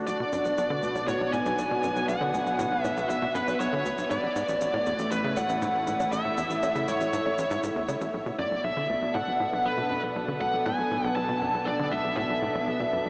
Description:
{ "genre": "ambient, sequencer-driven space music", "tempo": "119 BPM", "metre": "4/4", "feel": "straight", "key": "unclear", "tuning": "A4 = 440 Hz", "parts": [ { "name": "lush unison pad", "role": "sustained chords", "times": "0.0-13.1 s", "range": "A2 to A5", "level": "-33 LUFS", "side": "equal", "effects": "chorus, phaser" }, { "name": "analog drone", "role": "bass", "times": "0.7-13.1 s", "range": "A1 to B1", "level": "-43 LUFS", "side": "equal", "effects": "chorus, tube saturation" }, { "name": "high-gain lead guitar", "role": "melody", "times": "0.1-13.1 s", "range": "B4 to A5", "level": "-30 LUFS", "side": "equal", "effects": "distortion, tape echo" }, { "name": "tight sequencer bass", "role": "riff", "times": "0.1-13.1 s", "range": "A1 to D3", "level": "-36 LUFS", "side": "equal", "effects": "tape echo" }, { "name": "shaker and bongos", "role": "percussion", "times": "0.1-8.1 s", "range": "none", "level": "-43 LUFS", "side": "equal", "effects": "overdrive, tape echo" } ], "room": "wet huge ambient reverb, RT60 8.1 s", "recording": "in a vast, echoing space, cassette tape, small speaker sound", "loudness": "-28 LUFS", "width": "mono", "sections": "0.0-8.1 A section; 8.1-13.1 B section", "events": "none", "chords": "0.1 Bm; 4.1 A5; 8.1 Bm7" }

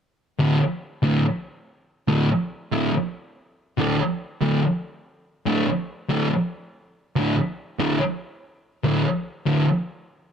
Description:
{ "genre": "rock", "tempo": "142 BPM", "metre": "4/4", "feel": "straight", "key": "unclear", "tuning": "A4 = 440 Hz", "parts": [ { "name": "thick fuzz guitar", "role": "solo", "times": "0.4-9.6 s", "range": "D2 to D3", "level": "-20 LUFS", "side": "equal", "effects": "distortion" } ], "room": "light reverb, digital ambience", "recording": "none", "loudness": "-21 LUFS", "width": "side -8 dB against mid", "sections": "0.4-10.3 A section", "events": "none", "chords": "0.4 D5" }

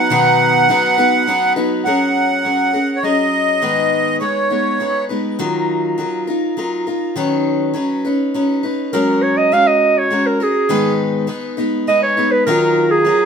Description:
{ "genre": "acoustic folk duo or small band", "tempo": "102 BPM", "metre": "3/4", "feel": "straight", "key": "F# major", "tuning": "A4 = 440 Hz", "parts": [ { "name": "accordion", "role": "melody", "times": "0.0-5.0 s", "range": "C#5 to F#5", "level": "-15 LUFS", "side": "right 1 dB", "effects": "light tremolo tuning" }, { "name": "clear clarinet", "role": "second line", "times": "0.0-1.5, 8.9-13.3 s", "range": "D#4 to E#5", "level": "-15 LUFS", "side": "right 3 dB", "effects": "none" }, { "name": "picked steel-string acoustic guitar", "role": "accompaniment", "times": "0.0-13.3 s", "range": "G#2 to B4", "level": "-17 LUFS", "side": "left 2 dB", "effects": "none" } ], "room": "moderate studio reverb, RT60 0.9 s", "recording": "band playing live in one room", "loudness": "-14 LUFS", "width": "side -6 dB against mid", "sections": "0.0-1.9 A section; 1.9-8.9 B section; 8.9-13.3 C section", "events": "clarinet solo 8.9-13.3", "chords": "0.0 B; 1.9 F#add9; 3.6 G#m; 5.4 D#madd9; 7.2 Badd9/D#; 8.9 F#add9; 10.7 G#m; 12.5 D#madd9" }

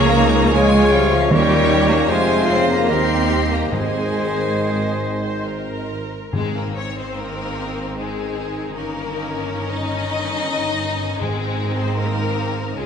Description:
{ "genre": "classical, slow romantic movement for symphony orchestra", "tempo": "63-81 BPM", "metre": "3/4", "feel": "rubato", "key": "Ab major", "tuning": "A4 = 440 Hz", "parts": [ { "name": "rich chamber violin section", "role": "melody", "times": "0.0-12.9 s", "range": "Ab3 to Db5", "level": "-29 LUFS", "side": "left 6 dB", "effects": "none" }, { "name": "dark clarinet", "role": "second line", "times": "0.0-6.0 s", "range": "G4 to Bb4", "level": "-26 LUFS", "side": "left 2 dB", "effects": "none" }, { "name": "mellow flute section", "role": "second line", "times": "0.0-5.9 s", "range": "Eb5 to F5", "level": "-28 LUFS", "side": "left 2 dB", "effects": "none" }, { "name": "rich chamber violin section", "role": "second line", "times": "0.0-12.9 s", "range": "Ab4 to C6", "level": "-27 LUFS", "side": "left 4 dB", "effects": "none" }, { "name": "warm oboe", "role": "second line", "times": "0.0-5.9 s", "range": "Bb4 to Db5", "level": "-25 LUFS", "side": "equal", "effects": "none" }, { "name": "mellow bassoon", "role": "accompaniment", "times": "0.0-5.9 s", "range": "Bb2 to Eb3", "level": "-26 LUFS", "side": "left 1 dB", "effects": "none" }, { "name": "rich chamber viola section", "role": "accompaniment", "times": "0.0-12.9 s", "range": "Ab3 to C5", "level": "-28 LUFS", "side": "right 1 dB", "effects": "none" }, { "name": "dark French horn section", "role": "sustained chords", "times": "0.0-12.9 s", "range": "Eb3 to Db4", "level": "-27 LUFS", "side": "left 4 dB", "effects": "none" }, { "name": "warm trombone section", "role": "sustained chords", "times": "0.0-6.0 s", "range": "Eb3 to Db4", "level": "-28 LUFS", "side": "right 2 dB", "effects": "none" }, { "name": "mellow tuba", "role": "bass", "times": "0.0-6.1 s", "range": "F1 to Eb2", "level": "-26 LUFS", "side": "right 3 dB", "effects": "none" }, { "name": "rich studio cello section", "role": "bass", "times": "0.0-12.9 s", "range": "Db2 to C4", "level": "-24 LUFS", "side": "right 2 dB", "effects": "none" }, { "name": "warm symphonic double bass section", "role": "bass", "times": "0.0-12.9 s", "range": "G1 to F2", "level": "-26 LUFS", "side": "right 3 dB", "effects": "none" }, { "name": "timpani", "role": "percussion", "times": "1.3-7.5, 11.2-12.3 s", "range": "Ab2 to Eb3", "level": "-24 LUFS", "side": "right 1 dB", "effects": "none" } ], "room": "wet scoring stage reverb, RT60 1.6 s", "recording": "nothing above 10.8 kHz", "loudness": "-17 LUFS", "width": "side -7 dB against mid", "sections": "0.0-6.3 A section; 6.3-12.9 B section", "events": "none", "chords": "0.0 Db; 1.3 Eb7; 2.1 Fm; 2.9 Eb; 3.7 Ab; 8.8 Eb7/G; 11.2 Ab" }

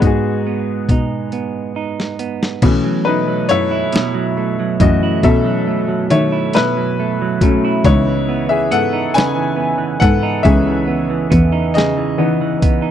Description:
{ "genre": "slow six-eight R&B", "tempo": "46 BPM (dotted quarters)", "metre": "6/8", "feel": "straight", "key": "unclear", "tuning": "A4 = 438 Hz", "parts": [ { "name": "semi-hollow electric guitar", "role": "second line", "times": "0.0-12.9 s", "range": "G#2 to E4", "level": "-19 LUFS", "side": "right 9 dB", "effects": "none" }, { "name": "clear grand piano", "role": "accompaniment", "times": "0.0-12.9 s", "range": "E3 to G#5", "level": "-18 LUFS", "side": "left 5 dB", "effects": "none" }, { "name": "rich cello", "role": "bass", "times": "0.0-12.9 s", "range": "C#2 to D#3", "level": "-18 LUFS", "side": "equal", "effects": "none" }, { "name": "dusty soul sampler-style drum kit", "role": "drums", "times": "0.0-12.8 s", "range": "crash cymbal, hi-hat, kick drum, snare drum", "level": "-16 LUFS", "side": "equal", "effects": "none" } ], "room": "little or no reverb", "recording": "dry, close 1970s-style studio recording", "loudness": "-13 LUFS", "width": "side -10 dB against mid", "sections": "0.0-2.6 A section; 2.6-12.9 B section", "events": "drum fill 1.3-2.6; grand piano solo 2.6-12.9", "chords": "0.0 G#m7; 2.6 B7sus4; 7.8 C#m9" }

